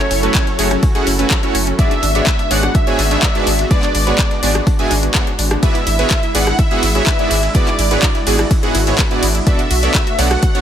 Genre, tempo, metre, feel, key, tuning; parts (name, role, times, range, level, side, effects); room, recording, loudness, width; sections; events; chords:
progressive house; 125 BPM; 4/4; straight; A4 = 440 Hz
wide unison lead; melody; 0.0-10.6 s; C#5 to F#5; -21 LUFS; equal; lush chorus, vintage 12-bit sampler grit, ping-pong delay
supersaw pad; sustained chords; 0.0-10.6 s; F#3 to A4; -25 LUFS; equal; sidechain pumping
wide unison pluck; arpeggios; 0.0-10.6 s; C#4 to F#5; -23 LUFS; equal; sidechain pumping, ping-pong delay
round analog bass; bass; 0.1-10.4 s; F#1 to B1; -18 LUFS; equal; sidechain pumping
breakbeat sampler-style drum kit; drums; 0.1-10.5 s; hi-hat, snare drum; -31 LUFS; left 1 dB
house drum kit; drums; 0.1-10.6 s; handclaps, hi-hat, ride cymbal, rim click; -20 LUFS; left 1 dB; overdrive
soft supersaw; stabs; 0.2-10.6 s; G#2 to G#5; -20 LUFS; right 2 dB; sidechain pumping, ping-pong delay
electronic kick drum; drums; 0.3-10.5 s; -16 LUFS; equal; overdrive
digital ambience; -12 LUFS; side -9 dB against mid
0.0-10.6 A section
0.0 F#m7; 1.8 G#m7b5; 9.5 Bm7